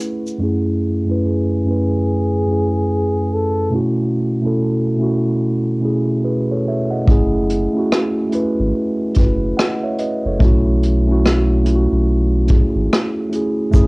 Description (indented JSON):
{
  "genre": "lo-fi hip hop",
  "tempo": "72 BPM",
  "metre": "4/4",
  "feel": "swing 62% on 16ths",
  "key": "F# minor",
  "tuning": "A4 = 440 Hz",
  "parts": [
    { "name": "mellow tine electric piano", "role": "accompaniment", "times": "0.0-13.9 s", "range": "F#2 to F#5", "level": "-17 LUFS", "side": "equal", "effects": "medium stereo tremolo, cassette tape, low-pass filter" },
    { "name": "vintage brush drum kit", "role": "drums", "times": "0.0-0.4, 7.1-13.9 s", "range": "hi-hat, kick drum, rim click, shaker", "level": "-16 LUFS", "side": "equal", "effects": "cassette tape" },
    { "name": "breathy flugelhorn", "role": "melody", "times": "1.3-3.8 s", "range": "G#4 to A4", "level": "-23 LUFS", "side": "left 1 dB", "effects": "low-pass filter, cassette tape" },
    { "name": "soft dub sub bass", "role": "bass", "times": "7.1-13.9 s", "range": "F#1 to B1", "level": "-17 LUFS", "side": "equal", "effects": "none" }
  ],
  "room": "light reverb",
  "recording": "home recording on cassette",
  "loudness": "-15 LUFS",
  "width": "side -27 dB against mid",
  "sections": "0.4-13.7 A section",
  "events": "filter sweep 0.4-13.7",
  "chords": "0.4 F#m9; 3.7 B9sus4; 7.1 F#m9; 10.4 B9sus4"
}